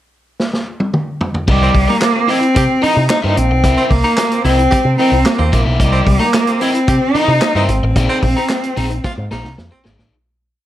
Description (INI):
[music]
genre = funk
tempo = 111 BPM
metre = 4/4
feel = straight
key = unclear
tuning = A4 = 440 Hz
[part]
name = vintage drum kit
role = drums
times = 0.4-10.1 s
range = crash cymbal, handclaps, hi-hat, kick drum, snare drum, toms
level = -18 LUFS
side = equal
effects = none
[part]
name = rich cello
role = melody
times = 1.5-9.5 s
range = G3 to D#4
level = -15 LUFS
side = equal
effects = slapback echo
[part]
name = crunchy overdriven guitar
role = accompaniment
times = 1.5-10.1 s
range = Eb4 to E5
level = -23 LUFS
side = left 4 dB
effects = none
[part]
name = picked electric bass with an envelope filter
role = bass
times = 1.5-10.1 s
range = Ab1 to C3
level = -16 LUFS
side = equal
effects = none
[part]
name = clear baritone saxophone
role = second line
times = 1.6-9.9 s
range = C4 to G4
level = -22 LUFS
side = right 1 dB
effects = slapback echo
[sound]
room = light reverb, studio ambience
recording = none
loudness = -12 LUFS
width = side -13 dB against mid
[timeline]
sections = 0.0-1.5 pickup bar; 1.5-10.1 A section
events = drum fill 0.4-1.5, 9.0-10.1; fade-out 8.0-10.1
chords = 0.0 N.C.; 1.5 C7#9; 8.0 Bb9sus4